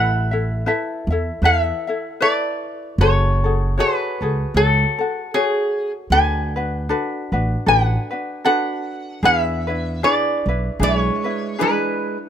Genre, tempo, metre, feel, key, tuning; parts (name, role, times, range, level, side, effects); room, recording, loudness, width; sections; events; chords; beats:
Hawaiian; 77 BPM; 4/4; swing 56% on 8ths; A major; A4 = 441 Hz
lap resonator guitar; melody; 0.0-12.2 s; G#4 to G#5; -20 LUFS; equal
ukulele; accompaniment; 0.0-12.3 s; D4 to E5; -23 LUFS; left 3 dB
upright bass; bass; 0.0-11.1 s; F#1 to E2; -20 LUFS; right 1 dB
picked steel-string acoustic guitar; second line; 10.8-12.2 s; G#3; -24 LUFS; right 9 dB
little or no reverb; close, detailed microphones; -17 LUFS; side -9 dB against mid
0.0-12.3 A section
0.0 Asus2; 3.0 F#madd9; 6.1 D6; 9.2 E7
0.65 1.43 2.21 | 2.99 3.77 4.55 5.34 | 6.12 6.90 7.68 8.46 | 9.24 10.02 10.80 11.59